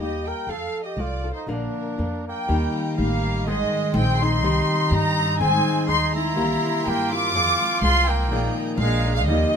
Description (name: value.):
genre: mexican folk, mariachi.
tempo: 124 BPM.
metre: 2/4.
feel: swing 54% on 8ths.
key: Eb major.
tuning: A4 = 440 Hz.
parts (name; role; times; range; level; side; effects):
warm studio violin section; melody; 0.0-9.6 s; Bb4 to D6; -24 LUFS; left 1 dB; none.
mellow trumpet; second line; 0.0-9.6 s; G3 to Bb4; -30 LUFS; right 4 dB; none.
nylon-string guitar; accompaniment; 0.0-9.6 s; Ab2 to Bb4; -27 LUFS; left 2 dB; none.
upright bass; bass; 0.0-9.4 s; Ab1 to G2; -25 LUFS; equal; none.
clear studio violin section; sustained chords; 2.5-9.6 s; F4 to C6; -35 LUFS; right 1 dB; none.
concert harp; arpeggios; 2.5-9.6 s; Eb3 to D4; -27 LUFS; right 1 dB; none.
room: light reverb.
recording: minimal, uncompressed stereo recording.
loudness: -20 LUFS.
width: side -7 dB against mid.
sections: 0.0-2.5 A section; 2.5-9.6 B section.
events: none.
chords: 0.5 F; 1.5 Bb; 2.5 Eb; 3.5 Ab; 4.4 Cm; 5.4 Ab; 6.4 C7; 7.3 Fm; 8.3 Bb7sus4; 8.8 Bb7.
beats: | 0.48 0.98 | 1.48 1.98 | 2.48 2.98 | 3.46 3.95 | 4.43 4.91 | 5.39 5.88 | 6.37 6.86 | 7.34 7.82 | 8.31 8.79 | 9.27.